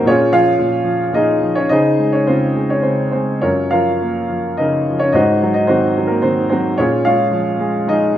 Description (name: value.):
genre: classical, lyrical solo piano.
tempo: 102-113 BPM.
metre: 3/4.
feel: rubato.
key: unclear.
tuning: A4 = 440 Hz.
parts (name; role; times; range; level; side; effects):
warm concert grand piano; solo; 0.0-8.2 s; Gb2 to F5; -13 LUFS; equal; none.
room: moderate recital hall reverb, RT60 1.6 s.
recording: none.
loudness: -13 LUFS.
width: side -11 dB against mid.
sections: 0.0-8.2 A section.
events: none.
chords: 0.1 Bbm7; 1.7 Dbmaj7; 3.4 Gbmaj7; 5.1 Ab9; 6.8 Bbm7.